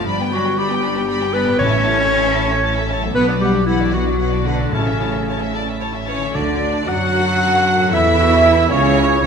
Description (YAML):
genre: classical, dramatic, fast romantic movement for symphony orchestra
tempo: 77 BPM (dotted quarters)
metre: 6/8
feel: straight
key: D major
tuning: A4 = 440 Hz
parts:
  - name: warm symphonic violin section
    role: melody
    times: 0.0-9.3 s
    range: C#4 to B5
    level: -26 LUFS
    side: left 4 dB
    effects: none
  - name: bright clarinet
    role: second line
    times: 0.0-9.3 s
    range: C#4 to C#5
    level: -21 LUFS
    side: left 2 dB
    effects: none
  - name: clear symphonic violin section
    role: second line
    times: 0.0-9.3 s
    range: F#4 to F#5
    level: -25 LUFS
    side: equal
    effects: none
  - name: warm symphonic viola section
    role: accompaniment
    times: 0.0-9.3 s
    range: B3 to F#4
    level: -27 LUFS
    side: right 1 dB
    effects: none
  - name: concert harp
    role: arpeggios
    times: 0.0-9.3 s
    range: G2 to A4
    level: -27 LUFS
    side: left 5 dB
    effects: none
  - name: clear symphonic cello section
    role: bass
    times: 0.0-9.3 s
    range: C#3 to C#4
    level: -23 LUFS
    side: right 1 dB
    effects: none
  - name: clear symphonic double bass section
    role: bass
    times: 0.0-9.3 s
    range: G1 to F#2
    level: -23 LUFS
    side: right 3 dB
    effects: none
  - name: timpani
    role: percussion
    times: 1.6-2.3, 4.7-7.1 s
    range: A2 to D3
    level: -26 LUFS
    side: left 1 dB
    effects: none
  - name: clear oboe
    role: second line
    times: 6.1-9.3 s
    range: C#5 to F#5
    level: -24 LUFS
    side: equal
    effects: none
  - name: silver concert flute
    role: second line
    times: 6.3-9.3 s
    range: C#5 to F#5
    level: -25 LUFS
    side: equal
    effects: none
  - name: mellow bassoon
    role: accompaniment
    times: 6.3-9.3 s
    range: C#3 to F#3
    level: -25 LUFS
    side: right 2 dB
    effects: none
  - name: clear French horn section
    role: sustained chords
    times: 6.3-9.3 s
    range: C#4 to F#4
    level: -24 LUFS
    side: left 2 dB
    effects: none
  - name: clear trombone section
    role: sustained chords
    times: 6.3-9.3 s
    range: C#3 to F#3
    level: -24 LUFS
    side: right 5 dB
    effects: none
  - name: mellow trumpet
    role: stabs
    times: 6.3-9.3 s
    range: C#5 to F#5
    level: -20 LUFS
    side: right 3 dB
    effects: none
  - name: mellow tuba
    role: bass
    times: 6.3-9.3 s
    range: C#2 to F#2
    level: -24 LUFS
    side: right 2 dB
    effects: none
room: wet scoring stage reverb, RT60 1.6 s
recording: minimal, uncompressed stereo recording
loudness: -14 LUFS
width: side -6 dB against mid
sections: 0.0-6.3 A section; 6.3-9.3 B section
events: none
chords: 0.1 G; 1.6 A; 3.1 Bm; 4.7 A; 6.3 D; 7.9 A/E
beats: | 0.07 0.83 | 1.60 2.37 | 3.15 3.93 | 4.73 5.54 | 6.35 7.14 | 7.93 8.71